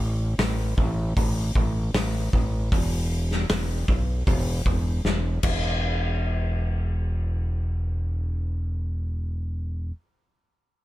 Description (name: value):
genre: rock, shoegaze and dream pop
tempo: 77 BPM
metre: 4/4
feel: straight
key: unclear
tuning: A4 = 440 Hz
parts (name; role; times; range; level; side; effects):
- growling fingered electric bass; bass; 0.0-9.9 s; E1 to B1; -25 LUFS; equal; overdrive
- loose indie drum kit; drums; 0.4-5.6 s; crash cymbal, hi-hat, kick drum, snare drum; -26 LUFS; equal; none
room: little or no reverb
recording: none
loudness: -23 LUFS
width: side -16 dB against mid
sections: 0.0-5.8 A section; 5.8-8.9 B section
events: drum fill 5.0-5.8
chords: none